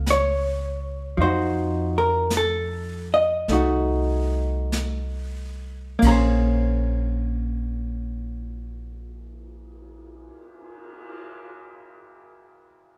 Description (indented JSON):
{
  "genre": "jazz ballad",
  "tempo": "45-55 BPM",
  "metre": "4/4",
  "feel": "swing 66% on 8ths",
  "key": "Bb minor",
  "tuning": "A4 = 440 Hz",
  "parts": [
    { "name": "vintage hollow-body jazz guitar", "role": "accompaniment", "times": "0.0-10.4 s", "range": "F3 to Bb5", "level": "-25 LUFS", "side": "equal", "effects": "none" },
    { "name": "upright bass", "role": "bass", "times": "0.0-10.3 s", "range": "Bb1 to F2", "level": "-28 LUFS", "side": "equal", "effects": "none" },
    { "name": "jazz brush drum kit", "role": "drums", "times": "0.1-11.1 s", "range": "brushed snare drum, cymbal swell, hi-hat, kick drum, ride cymbal, snare drum", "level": "-35 LUFS", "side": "equal", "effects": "none" }
  ],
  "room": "moderate large studio reverb, RT60 1.2 s",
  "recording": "none",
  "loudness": "-23 LUFS",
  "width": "mono",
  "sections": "0.0-1.2 A section; 1.2-6.0 B section; 6.0-11.4 C section",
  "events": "slowing down 0.0-6.0",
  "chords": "0.0 Db7; 1.2 F7b9; 6.0 Bbm9"
}